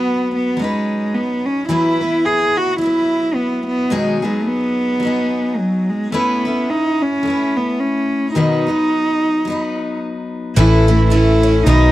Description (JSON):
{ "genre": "acoustic folk duo or small band", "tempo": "108 BPM", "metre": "4/4", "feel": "swing 57% on 8ths", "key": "unclear", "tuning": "A4 = 440 Hz", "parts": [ { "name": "warm cello", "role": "melody", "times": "0.0-11.9 s", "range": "F#3 to G#4", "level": "-17 LUFS", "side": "right 1 dB", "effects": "none" }, { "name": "picked steel-string acoustic guitar", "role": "accompaniment", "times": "0.0-11.9 s", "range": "A2 to B4", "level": "-20 LUFS", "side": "left 2 dB", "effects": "none" }, { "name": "picked twelve-string acoustic guitar", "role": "arpeggios", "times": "10.6-11.9 s", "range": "D#3 to C#4", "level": "-22 LUFS", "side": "right 6 dB", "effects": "slapback echo" }, { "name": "hollow-body short-scale fingered electric bass", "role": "bass", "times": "10.6-11.9 s", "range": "A1 to B1", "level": "-13 LUFS", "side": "equal", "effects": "none" } ], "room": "light reverb", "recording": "dry, close 1970s-style studio recording, faint mains hum", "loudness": "-15 LUFS", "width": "side -15 dB against mid", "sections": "0.0-10.6 A section; 10.6-11.9 B section", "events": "none", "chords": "0.0 B5; 0.6 Badd9; 1.7 Esus2; 3.9 B6; 6.1 Aadd9; 8.4 B; 10.6 A", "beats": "0.03 0.58 1.14 | 1.69 2.25 2.81 3.36 | 3.92 4.47 5.03 5.58 | 6.14 6.69 7.25 7.80 | 8.36 8.91 9.46 10.01 | 10.56 11.12 11.67" }